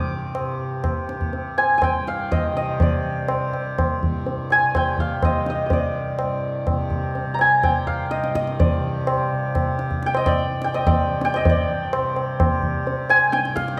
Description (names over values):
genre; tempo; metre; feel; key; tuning
indian classical, Hindustani; 125 BPM; 3/4; straight; C raga darbari; A4 = 440 Hz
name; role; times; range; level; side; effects
santur; melody; 0.0-13.8 s; D5 to F6; -25 LUFS; equal; none
tanpura; drone; 0.0-13.8 s; C2 to C3; -30 LUFS; equal; none
tabla; percussion; 0.3-13.8 s; none; -25 LUFS; equal; none
room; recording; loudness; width
wet recital hall reverb, RT60 1.6 s; none; -22 LUFS; mono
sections
0.0-11.4 A section; 11.4-13.8 B section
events
speeding up 0.0-13.8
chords
none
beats
0.35 0.84 | 1.33 1.82 2.31 | 2.80 3.29 3.77 | 4.26 4.75 5.23 | 5.71 6.20 6.68 | 7.16 7.64 8.12 | 8.60 9.07 9.55 | 10.03 10.50 10.98 | 11.45 11.92 12.39 | 12.87 13.34